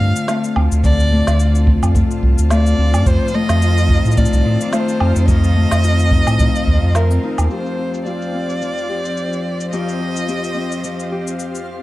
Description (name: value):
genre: folktronica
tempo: 108 BPM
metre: 4/4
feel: swing 56% on 16ths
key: unclear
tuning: A4 = 440 Hz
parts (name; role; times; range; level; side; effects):
- dark violin; melody; 0.0-11.6 s; Bb4 to F5; -24 LUFS; equal; digital delay
- clear string quartet; sustained chords; 0.0-11.8 s; D3 to A5; -26 LUFS; equal; low-pass filter
- Celtic harp; arpeggios; 0.0-11.8 s; F2 to G4; -22 LUFS; left 4 dB; low-pass filter
- warm sub bass; bass; 0.0-7.5 s; C2 to A2; -14 LUFS; equal; none
- backwards swelling texture; texture; 0.5-11.8 s; F4 to F5; -32 LUFS; left 2 dB; built-in reverb
- electronic shaker, snare drum and woodblock; drums; 0.2-11.6 s; none; -25 LUFS; right 2 dB; overdrive, low-pass filter on perc, low-pass filter on snare, low-pass filter on room
- kick drum; drums; 0.8-6.8 s; none; -17 LUFS; equal; none
room: studio ambience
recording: dark, warm production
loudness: -14 LUFS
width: side -17 dB against mid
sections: 0.0-7.5 A section; 7.5-11.8 B section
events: kick drops out 7.0-7.5; filter sweep on drum 7.5-11.8; filter sweep on harp 7.5-11.8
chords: 0.0 Dm7; 3.1 F7; 7.5 Fsus2